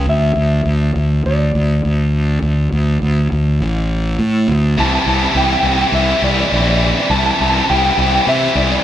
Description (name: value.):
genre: post-rock.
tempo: 102 BPM.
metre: 4/4.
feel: straight.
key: unclear.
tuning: A4 = 440 Hz.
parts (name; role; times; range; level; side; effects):
mellow electric guitar; melody; 0.0-8.8 s; D5 to A5; -18 LUFS; equal; none.
fuzz fingered electric bass; bass; 0.0-8.8 s; A1 to C3; -15 LUFS; equal; overdrive.
distorted electric guitar; riff; 4.8-8.8 s; C3 to E3; -16 LUFS; equal; overdrive.
room: moderate large studio reverb, RT60 1.1 s.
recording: band playing live in one room.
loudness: -13 LUFS.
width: side -11 dB against mid.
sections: 0.0-4.8 A section; 4.8-8.8 B section.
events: build-up 4.8-8.8.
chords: 0.1 Dsus2; 4.8 Cadd9.